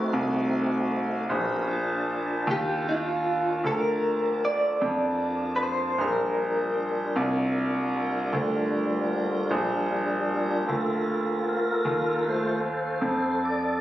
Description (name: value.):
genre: slow blues.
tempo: 51 BPM (dotted quarters).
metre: 12/8.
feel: straight.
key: G minor.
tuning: A4 = 440 Hz.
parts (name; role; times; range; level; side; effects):
electric guitar through a small old amp; melody; 0.0-9.9 s; F4 to D5; -27 LUFS; equal; tremolo.
tonewheel organ; sustained chords; 0.0-13.8 s; G3 to A5; -29 LUFS; left 1 dB; slow rotary speaker, overdrive, chorus vibrato.
clear concert grand piano; bass; 0.0-13.8 s; Bb1 to F2; -27 LUFS; right 1 dB; none.
room: light reverb.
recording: recorded on a phone in the room, club reverb.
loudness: -24 LUFS.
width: side -13 dB against mid.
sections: 0.0-10.7 A section; 10.7-13.8 B section.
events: tonewheel organ solo 10.7-13.8.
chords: 0.0 D7b9 (rootless); 1.3 Gm7; 10.7 Gm7 (rootless).